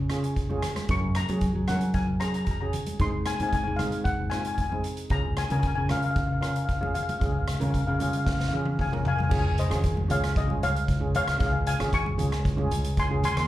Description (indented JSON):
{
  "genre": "calypso",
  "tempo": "114 BPM",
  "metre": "4/4",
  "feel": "straight",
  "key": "Db major",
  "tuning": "A4 = 440 Hz",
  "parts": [
    { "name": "steel pan", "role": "melody", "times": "0.0-13.4 s", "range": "Ab4 to Db6", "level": "-30 LUFS", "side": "left 3 dB", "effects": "slapback echo" },
    { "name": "modern bright fingered electric bass", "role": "bass", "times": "0.0-13.5 s", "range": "Ab1 to Gb3", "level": "-27 LUFS", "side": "equal", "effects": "none" },
    { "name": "steel pan", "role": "accompaniment", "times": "0.1-13.3 s", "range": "C4 to Bb4", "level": "-34 LUFS", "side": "right 2 dB", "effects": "none" },
    { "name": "street-band drum kit", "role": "drums", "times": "0.1-13.5 s", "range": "crash cymbal, hi-hat, kick drum, rim click, snare drum, toms", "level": "-29 LUFS", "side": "equal", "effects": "none" },
    { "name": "congas", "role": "percussion", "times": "0.5-13.4 s", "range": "none", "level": "-35 LUFS", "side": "right 1 dB", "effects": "none" }
  ],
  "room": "light reverb",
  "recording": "live gig heard through the venue's PA, club reverb",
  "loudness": "-24 LUFS",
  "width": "side -14 dB against mid",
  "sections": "0.0-9.3 A section; 9.3-13.5 B section",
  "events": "drum fill 8.3-9.3",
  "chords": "0.0 Db; 0.9 Gb; 3.0 Ab; 5.1 Db"
}